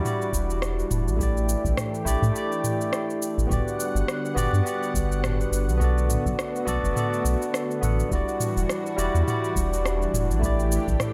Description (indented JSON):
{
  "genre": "sunset chillout",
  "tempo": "104 BPM",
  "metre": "4/4",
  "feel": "swing 57% on 16ths",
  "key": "unclear",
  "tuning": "A4 = 440 Hz",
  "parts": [
    { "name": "barky tine electric piano", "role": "accompaniment", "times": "0.0-11.1 s", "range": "G3 to F#5", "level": "-30 LUFS", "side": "equal", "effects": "tape echo" },
    { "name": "lush unison pad", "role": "sustained chords", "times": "0.0-11.1 s", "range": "D3 to F#5", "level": "-34 LUFS", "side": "equal", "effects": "chorus" },
    { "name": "smooth R&B drum kit", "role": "drums", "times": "0.1-11.1 s", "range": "rim click, shaker, toms", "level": "-33 LUFS", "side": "equal", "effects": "studio reverb" },
    { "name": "round analog bass", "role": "bass", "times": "0.3-11.0 s", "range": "E1 to A2", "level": "-27 LUFS", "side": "equal", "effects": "none" },
    { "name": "electronic kick drum", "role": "drums", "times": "0.3-11.0 s", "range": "none", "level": "-32 LUFS", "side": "equal", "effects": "studio reverb" }
  ],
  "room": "light reverb",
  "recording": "echo-heavy mix",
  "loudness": "-25 LUFS",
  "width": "mono",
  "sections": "0.0-11.1 A section",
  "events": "none",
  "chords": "0.0 Em9; 1.2 A7sus4; 3.5 Gmaj7; 5.8 Bm7; 8.1 Em9; 10.4 A7sus4"
}